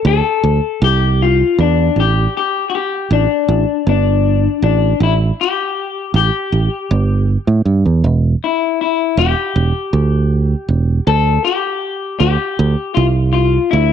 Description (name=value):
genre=blues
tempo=79 BPM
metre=4/4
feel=straight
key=A minor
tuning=A4 = 438 Hz
part: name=electric guitar through a small old amp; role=melody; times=0.0-13.9 s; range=D4 to A4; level=-16 LUFS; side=left 9 dB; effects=spring reverb
part: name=fingered electric bass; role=bass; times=0.0-13.9 s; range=E1 to A2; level=-13 LUFS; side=right 3 dB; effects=none
room=digital ambience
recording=none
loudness=-13 LUFS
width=side -8 dB against mid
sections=0.0-13.9 A section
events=none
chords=0.0 D5; 2.0 A5; 8.0 Em7; 11.1 Csus2